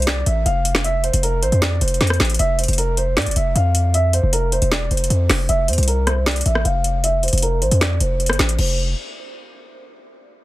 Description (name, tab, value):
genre	hip hop, trap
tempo	155 BPM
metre	4/4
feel	half-time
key	F major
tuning	A4 = 438 Hz
part	dark grand piano	melody	0.0-8.8 s	Bb4 to F5	-23 LUFS	right 1 dB	low-pass filter, tape echo
part	hard-hitting 808-style bass	bass	0.0-8.9 s	E1 to A2	-18 LUFS	equal	none
part	trap drum kit	drums	0.0-8.7 s	crash cymbal, finger snaps, hi-hat, rim click, snare drum	-21 LUFS	equal	none
room	little or no reverb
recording	dense, heavily limited modern master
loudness	-16 LUFS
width	side -17 dB against mid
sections	0.0-2.4 A section; 2.4-8.6 B section; 8.6-10.1 C section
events	filter sweep on grand piano 2.4-8.6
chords	0.0 F; 2.4 F5; 5.5 F; 8.6 F5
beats	0.07 0.46 | 0.84 1.23 1.62 2.01 | 2.39 2.78 3.17 3.55 | 3.94 4.33 4.71 5.10 | 5.49 5.88 6.26 6.65 | 7.04 7.42 7.81 8.20 | 8.59